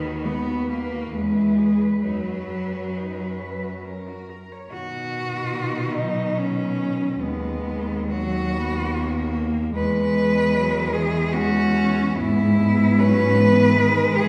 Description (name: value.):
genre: classical, lyrical piece for cello ensemble.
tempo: 64-78 BPM.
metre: 3/4.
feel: rubato.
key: B major.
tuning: A4 = 440 Hz.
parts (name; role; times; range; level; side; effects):
rich cello; melody; 0.0-14.3 s; B3 to B4; -27 LUFS; equal; none.
rich cello; second line; 0.0-14.3 s; D#3 to C#5; -30 LUFS; equal; none.
clear cello; accompaniment; 0.0-14.3 s; D#3 to B3; -27 LUFS; equal; none.
rich cello; bass; 0.0-14.3 s; D#2 to B2; -28 LUFS; equal; none.
room: wet recital hall reverb, RT60 1.6 s.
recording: heard from further back in the room.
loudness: -22 LUFS.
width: mono.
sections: 0.0-4.7 A section; 4.7-14.3 B section.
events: none.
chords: 0.0 B/D#; 1.1 C#m7/E; 2.0 B/F#; 4.7 B; 7.2 B/D#; 9.8 E; 12.1 E/G#.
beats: 0.26 1.12 | 2.04 2.96 3.85 | 4.72 5.55 6.38 | 7.22 8.12 8.95 | 9.76 10.56 11.35 | 12.14 12.98 13.77.